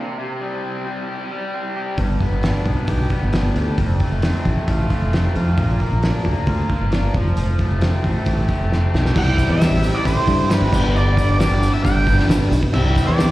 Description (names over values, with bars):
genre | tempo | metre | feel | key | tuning
classic rock | 134 BPM | 4/4 | straight | unclear | A4 = 436 Hz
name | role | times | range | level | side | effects
raw garage guitar | riff | 0.0-13.3 s | F2 to G4 | -24 LUFS | equal | overdrive, slapback echo
modern bright fingered electric bass | bass | 2.0-13.3 s | F1 to G2 | -18 LUFS | equal | none
cloth-damped thuddy drum kit | drums | 2.0-13.3 s | crash cymbal, hi-hat, kick drum, snare drum | -21 LUFS | equal | none
octave-fuzz lead guitar | melody | 9.2-13.3 s | B4 to G5 | -22 LUFS | right 1 dB | distortion, plate reverb, slapback echo
dark concert grand piano | accompaniment | 9.2-13.3 s | B3 to A4 | -28 LUFS | right 1 dB | plate reverb, slapback echo
tambourine | percussion | 9.2-13.3 s | none | -41 LUFS | left 2 dB | none
room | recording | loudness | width
light reverb | live gig heard through the venue's PA, recital hall reverb | -16 LUFS | side -16 dB against mid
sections
0.0-9.2 A section; 9.2-13.3 B section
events
drum fill 8.7-9.2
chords
0.0 C5; 2.0 G; 3.8 F; 5.6 Bb; 7.2 Fadd9; 9.2 C; 10.7 G; 12.7 C